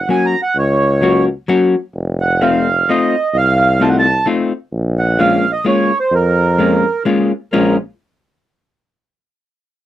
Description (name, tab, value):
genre	musette waltz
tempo	129 BPM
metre	3/4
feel	swing 55% on 8ths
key	Bb minor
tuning	A4 = 438 Hz
part	mellow accordion	melody	0.0-7.8 s	Bb4 to Bb5	-15 LUFS	right 3 dB	none
part	warm tuba	bass	0.0-7.8 s	F1 to F2	-17 LUFS	equal	none
part	hollow-body jazz guitar	accompaniment	0.1-7.8 s	Gb3 to Gb4	-14 LUFS	left 3 dB	none
room	little or no reverb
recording	dry, close 1970s-style studio recording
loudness	-12 LUFS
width	side -13 dB against mid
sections	0.0-7.5 A section; 7.5-8.9 B section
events	none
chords	0.0 Gb; 2.0 F7; 4.7 Bbm7